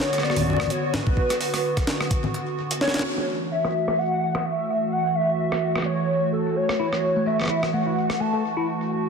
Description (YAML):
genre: IDM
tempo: 128 BPM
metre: 4/4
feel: swing 56% on 16ths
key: unclear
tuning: A4 = 438 Hz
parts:
  - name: warbly nostalgic lead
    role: melody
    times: 0.0-8.7 s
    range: A4 to A5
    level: -25 LUFS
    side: left 1 dB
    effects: ensemble chorus, cassette tape, digital delay
  - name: hollow soft pad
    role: sustained chords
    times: 0.0-9.1 s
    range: D3 to F#4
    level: -27 LUFS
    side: right 3 dB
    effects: chorus
  - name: jungle sampler-style drum kit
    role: drums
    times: 0.0-8.2 s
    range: congas, hi-hat, rim click, snare drum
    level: -27 LUFS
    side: left 1 dB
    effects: low-pass filter on snare, low-pass filter on hats, low-pass filter on perc, low-pass filter on room
  - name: electronic kick drum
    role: drums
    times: 1.1-2.2 s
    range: none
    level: -23 LUFS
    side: equal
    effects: none
  - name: tine electric piano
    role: arpeggios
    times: 6.8-8.7 s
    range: A3 to F#4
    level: -27 LUFS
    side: left 5 dB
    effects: phaser, digital delay
room: moderate lush hall reverb, RT60 2.0 s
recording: dense, heavily limited modern master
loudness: -21 LUFS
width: side -5 dB against mid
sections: 0.0-3.0 A section; 3.0-9.1 B section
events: kick drops out 2.6-3.0; band accent 3.0; filter sweep on drum 3.0-9.1; filter sweep on analog synth pad 3.0-9.1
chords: 0.0 Bm; 3.0 F#m7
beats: 0.23 0.70 | 1.17 1.64 2.11 2.58 | 3.04 3.51 3.98 4.45 | 4.92 5.39 5.86 6.33 | 6.79 7.26 7.73 8.20 | 8.67